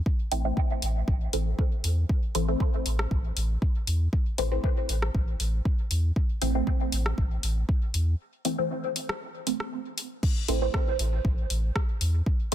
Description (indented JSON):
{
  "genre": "dub techno",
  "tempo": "118 BPM",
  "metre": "4/4",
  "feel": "straight",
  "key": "A minor",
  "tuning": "A4 = 440 Hz",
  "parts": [
    { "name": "electronic kick drum", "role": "drums", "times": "0.1-12.4 s", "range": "none", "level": "-26 LUFS", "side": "equal", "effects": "none" },
    { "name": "filtered dub chord stab", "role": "stabs", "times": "0.3-12.5 s", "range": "E3 to C4", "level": "-31 LUFS", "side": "right 1 dB", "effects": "phaser, sidechain pumping, dub echo" },
    { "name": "warm sub bass", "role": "bass", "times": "0.3-12.5 s", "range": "A1 to E2", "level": "-26 LUFS", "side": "equal", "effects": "tube saturation, sidechain pumping" },
    { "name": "deep house drum kit", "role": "drums", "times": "0.3-12.5 s", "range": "crash cymbal, hi-hat, rim click", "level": "-33 LUFS", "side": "left 1 dB", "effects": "soft clipping on snare" }
  ],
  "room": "digital ambience",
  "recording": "dense, heavily limited modern master",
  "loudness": "-25 LUFS",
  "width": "side -11 dB against mid",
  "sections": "0.0-10.2 A section; 10.2-12.5 A section",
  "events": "filter sweep on synth stab 0.0-10.2; break 8.2-10.2",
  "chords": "0.0 Am; 10.2 A5",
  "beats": "| 0.06 0.57 1.08 1.59 | 2.10 2.60 3.11 3.62 | 4.13 4.64 5.15 5.65 | 6.16 6.67 7.18 7.69 | 8.20 8.71 9.21 9.72 | 10.23 10.74 11.25 11.76 | 12.26"
}